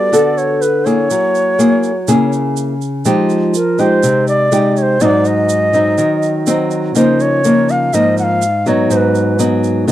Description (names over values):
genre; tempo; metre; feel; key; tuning
bossa nova; 123 BPM; 4/4; straight; unclear; A4 = 439 Hz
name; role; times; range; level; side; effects
reedy bansuri; melody; 0.0-9.4 s; Bb4 to Gb5; -15 LUFS; right 1 dB; none
nylon-string guitar; accompaniment; 0.0-9.9 s; Ab2 to A4; -13 LUFS; left 1 dB; none
tube shaker; percussion; 0.1-9.9 s; none; -27 LUFS; right 12 dB; none
room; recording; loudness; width
light reverb; dry, close 1970s-style studio recording; -11 LUFS; side -13 dB against mid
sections
0.0-9.9 A section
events
none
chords
0.0 Gmaj9 (rootless); 1.1 Gb9; 3.1 Fm9; 5.0 Ab7; 7.0 Db69; 8.9 Abm7